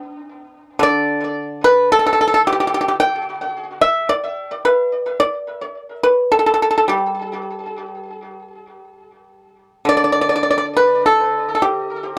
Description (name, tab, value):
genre	chinese traditional, Chinese solo plucked strings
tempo	50-56 BPM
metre	4/4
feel	rubato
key	D zhi mode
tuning	A4 = 438 Hz
part	pipa	solo	0.0-12.2 s	D3 to G5	-18 LUFS	equal	tape echo
room	light reverb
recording	dry, close 1970s-style studio recording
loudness	-17 LUFS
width	mono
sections	0.0-12.2 A section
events	none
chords	none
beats	| 0.81 1.91 3.00 4.10 | 5.21 6.32 7.49 8.68 | 9.87 11.05